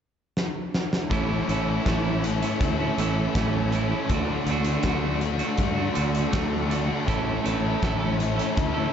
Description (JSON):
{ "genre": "rock, shoegaze and dream pop", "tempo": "80 BPM", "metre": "4/4", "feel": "straight", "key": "unclear", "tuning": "A4 = 439 Hz", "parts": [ { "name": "big rock drum kit", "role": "drums", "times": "0.4-8.8 s", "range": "hi-hat, kick drum, snare drum", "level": "-29 LUFS", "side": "equal", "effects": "none" }, { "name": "biting overdriven guitar", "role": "riff", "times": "1.1-8.9 s", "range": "A2 to A4", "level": "-28 LUFS", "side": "left 7 dB", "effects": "lush chorus" }, { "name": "biting overdriven guitar", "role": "riff", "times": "1.1-8.9 s", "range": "A2 to A4", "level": "-27 LUFS", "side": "right 6 dB", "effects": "reverse reverb" }, { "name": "growling fingered electric bass", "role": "bass", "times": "1.1-8.9 s", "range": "A1 to G2", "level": "-28 LUFS", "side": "equal", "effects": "overdrive" } ], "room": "wet huge ambient reverb, RT60 8.8 s", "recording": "dreamy mix soaked in reverb, nothing above 7.7 kHz", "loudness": "-22 LUFS", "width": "side -8 dB against mid", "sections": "0.0-1.1 A section; 1.1-8.9 B section", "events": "drum fill 0.4-1.1", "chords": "0.0 N.C.; 1.1 A; 4.1 D; 7.1 A" }